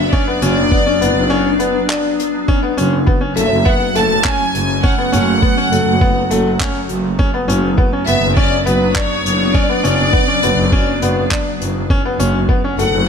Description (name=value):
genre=piano and strings electronica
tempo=102 BPM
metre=4/4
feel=straight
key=unclear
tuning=A4 = 442 Hz
part: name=rich studio violin section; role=melody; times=0.0-13.1 s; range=B4 to A5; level=-18 LUFS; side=equal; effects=none
part: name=granular cloud pad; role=sustained chords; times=0.0-13.1 s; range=F#3 to D4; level=-21 LUFS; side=left 1 dB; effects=built-in reverb
part: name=bright studio double bass section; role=bass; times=0.0-13.1 s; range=F#1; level=-19 LUFS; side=equal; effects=sidechain pumping
part: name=bright upright piano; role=riff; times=0.1-13.0 s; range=A3 to D4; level=-19 LUFS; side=left 2 dB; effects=ping-pong delay
part: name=electronic kick drum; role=drums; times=0.1-12.6 s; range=none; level=-16 LUFS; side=equal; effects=none
part: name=vintage brush drum kit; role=drums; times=0.4-12.9 s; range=handclaps, hi-hat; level=-24 LUFS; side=left 1 dB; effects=none
room=light reverb, small room ambience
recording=none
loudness=-12 LUFS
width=side -6 dB against mid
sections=0.0-13.1 A section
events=break 1.3-2.5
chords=0.0 Bm/F#; 2.5 F#m; 7.2 Bm/F#; 11.9 F#m